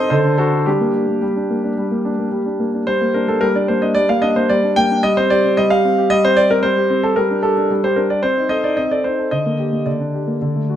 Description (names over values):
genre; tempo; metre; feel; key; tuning
classical-period piano sonatina; 111 BPM; 4/4; straight; G minor; A4 = 440 Hz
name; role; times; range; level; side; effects
warm grand piano; solo; 0.0-10.8 s; D3 to G5; -14 LUFS; equal; none
room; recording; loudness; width
moderate recital hall reverb, RT60 1.5 s; close, detailed microphones; -14 LUFS; side -10 dB against mid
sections
0.0-2.9 A section; 2.9-10.8 B section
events
none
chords
0.1 D7; 0.7 Gm; 7.2 G5; 8.2 Adim/C; 9.3 Gm/D